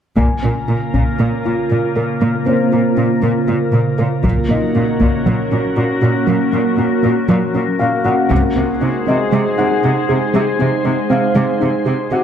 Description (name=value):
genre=cinematic, hybrid orchestral and electronic film score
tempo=118 BPM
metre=4/4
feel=straight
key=Bb minor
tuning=A4 = 440 Hz
part: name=glassy FM pad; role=sustained chords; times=0.5-12.2 s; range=Db3 to C5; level=-17 LUFS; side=equal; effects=ensemble chorus, built-in reverb
part: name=tight sequenced synth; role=arpeggios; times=0.2-12.2 s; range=Gb3 to Bb4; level=-21 LUFS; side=right 1 dB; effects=chorus, digital delay
part: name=rich symphonic cello section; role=bass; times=0.2-12.2 s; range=Bb2 to C3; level=-19 LUFS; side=right 1 dB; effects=none
part: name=taiko ensemble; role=drums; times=0.2-1.2, 4.2-5.2, 8.3-9.3 s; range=none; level=-20 LUFS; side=left 1 dB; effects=none
part: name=dark baby grand piano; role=texture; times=0.2-12.2 s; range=C4 to Ab5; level=-23 LUFS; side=left 2 dB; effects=digital delay
room=moderate scoring stage reverb, RT60 1.8 s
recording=close, detailed microphones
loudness=-13 LUFS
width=side -8 dB against mid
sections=0.2-12.2 A section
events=build-up 0.2-12.2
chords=0.2 Bbm; 4.2 Gb/Bb; 8.3 Ab/C